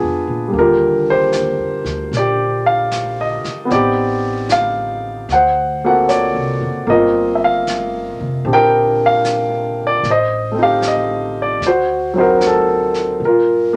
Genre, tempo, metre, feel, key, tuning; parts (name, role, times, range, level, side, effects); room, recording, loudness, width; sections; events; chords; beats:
jazz ballad; 76 BPM; 4/4; swing 68% on 8ths; G minor; A4 = 441 Hz
warm baby grand piano; accompaniment; 0.0-13.8 s; D3 to G5; -16 LUFS; equal
upright bass; bass; 0.0-13.8 s; F1 to Bb2; -28 LUFS; equal
jazz brush drum kit; drums; 0.5-13.8 s; brushed snare drum, hi-hat, snare drum; -32 LUFS; equal
wet studio reverb, RT60 0.5 s; -16 LUFS; mono
0.0-13.2 A section
0.0 Bb7b9; 0.5 Ebmaj9; 3.7 Am7b5; 5.3 D7b13; 6.9 Gm7; 10.0 Am7b5; 11.6 D7b9; 13.2 Gm7
| 0.54 1.33 2.12 2.92 | 3.71 4.50 5.29 6.08 | 6.87 7.66 8.45 9.24 | 10.03 10.82 11.61 12.40 | 13.20